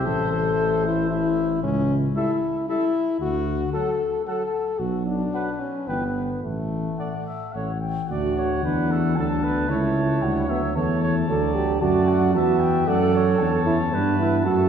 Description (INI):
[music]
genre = classical, brass quintet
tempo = 114 BPM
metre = 3/4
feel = straight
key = D major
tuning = A4 = 440 Hz
[part]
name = mellow cornet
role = melody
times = 0.0-14.7 s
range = E5 to A5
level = -32 LUFS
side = left 5 dB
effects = none
[part]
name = clear trumpet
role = second line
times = 0.0-14.7 s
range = A4 to E5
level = -31 LUFS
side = right 5 dB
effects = none
[part]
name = clear French horn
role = accompaniment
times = 0.0-14.7 s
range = E3 to A4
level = -27 LUFS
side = left 3 dB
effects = none
[part]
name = warm trombone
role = accompaniment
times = 0.0-14.7 s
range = E3 to A4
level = -26 LUFS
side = right 3 dB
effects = none
[part]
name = warm tuba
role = bass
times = 0.0-14.7 s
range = G1 to G2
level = -24 LUFS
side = equal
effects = none
[sound]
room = wet concert hall reverb, RT60 1.9 s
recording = heard from further back in the room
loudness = -20 LUFS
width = side -8 dB against mid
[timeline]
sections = 0.0-8.1 A section; 8.1-14.7 B section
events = none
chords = 0.1 Am; 1.6 A7/C#; 3.2 D; 4.8 Bm; 5.9 Em/G; 6.4 D/A (rootless); 8.1 D; 9.7 A/C#; 11.3 D